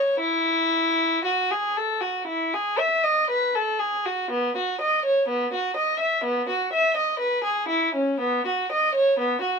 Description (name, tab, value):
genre	classical, baroque-style suite movement for unaccompanied violin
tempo	58-63 BPM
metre	4/4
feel	rubato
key	E major, B major from 4.3 s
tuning	A4 = 437 Hz
part	dark violin	solo	0.0-9.6 s	B3 to E5	-21 LUFS	equal	none
room	light reverb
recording	close, detailed microphones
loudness	-21 LUFS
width	side -5 dB against mid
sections	0.0-4.3 A section; 4.3-9.6 A section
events	none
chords	none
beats	| 0.21 1.25 2.28 3.29 | 4.31 5.28 6.23 7.20 | 8.19 9.17